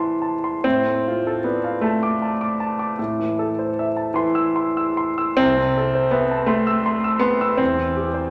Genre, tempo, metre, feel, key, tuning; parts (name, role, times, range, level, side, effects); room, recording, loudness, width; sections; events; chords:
classical, romantic nocturne for solo piano; 44-55 BPM (dotted quarters); 12/8; rubato; A minor; A4 = 440 Hz
warm concert grand piano; solo; 0.0-8.3 s; C2 to E6; -21 LUFS; equal
wet recital hall reverb, RT60 1.8 s; -21 LUFS; mono
0.0-8.3 A section
0.0 Am; 0.6 Dm/A; 3.0 Am; 5.4 Am/C; 7.6 C/E